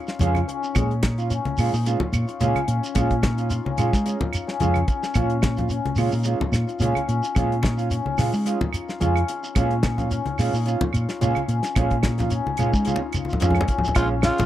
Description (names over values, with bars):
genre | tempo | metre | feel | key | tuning
afrobeat | 109 BPM | 4/4 | swing 55% on 16ths | Bb minor | A4 = 440 Hz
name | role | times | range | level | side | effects
hammered dulcimer | arpeggios | 0.0-14.5 s | Db4 to F4 | -28 LUFS | left 6 dB | none
mellow electric guitar | stabs | 0.1-14.5 s | Ab3 to F4 | -28 LUFS | right 6 dB | spring reverb
damped 70s drum kit | drums | 0.1-14.5 s | hi-hat, kick drum, snare drum | -25 LUFS | equal | none
shekere | percussion | 0.1-14.5 s | none | -30 LUFS | right 1 dB | none
hollow-body short-scale fingered electric bass | bass | 0.2-14.5 s | Bb1 to Ab3 | -23 LUFS | equal | none
congas | percussion | 0.2-14.5 s | none | -28 LUFS | left 2 dB | none
claves | percussion | 0.3-14.4 s | none | -36 LUFS | right 14 dB | none
raspy alto saxophone | melody | 14.0-14.5 s | F4 | -23 LUFS | right 1 dB | none
breathy tenor saxophone | second line | 14.0-14.5 s | Db3 | -31 LUFS | right 4 dB | none
room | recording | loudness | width
little or no reverb | dry, close 1970s-style studio recording | -20 LUFS | side -12 dB against mid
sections
0.0-14.0 A section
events
drum fill 12.9-14.0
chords
0.0 Bbm7